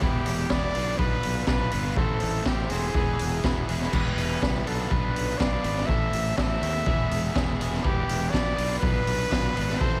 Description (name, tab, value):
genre	indie rock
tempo	122 BPM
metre	4/4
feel	straight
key	unclear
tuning	A4 = 439 Hz
part	warm trumpet	melody	0.0-10.0 s	G4 to E5	-33 LUFS	equal	analog delay
part	overdriven electric guitar	riff	0.0-10.0 s	E2 to C5	-33 LUFS	equal	analog delay
part	fuzz fingered electric bass	bass	0.0-10.0 s	E1 to D#2	-32 LUFS	equal	overdrive
part	raw garage drum kit	drums	0.0-9.9 s	crash cymbal, hi-hat, kick drum, snare drum	-29 LUFS	equal	none
room	studio reverb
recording	echo-heavy mix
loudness	-26 LUFS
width	mono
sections	0.0-10.0 A section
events	none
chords	0.0 Em; 0.7 Bdim; 2.0 Am; 3.0 E; 3.9 Em; 4.7 Bdim; 5.9 Am; 6.9 E; 7.9 Em; 8.6 Bdim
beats	| 0.01 0.50 0.99 1.48 | 1.97 2.46 2.95 3.44 | 3.93 4.42 4.91 5.40 | 5.89 6.38 6.87 7.36 | 7.85 8.34 8.83 9.32 | 9.81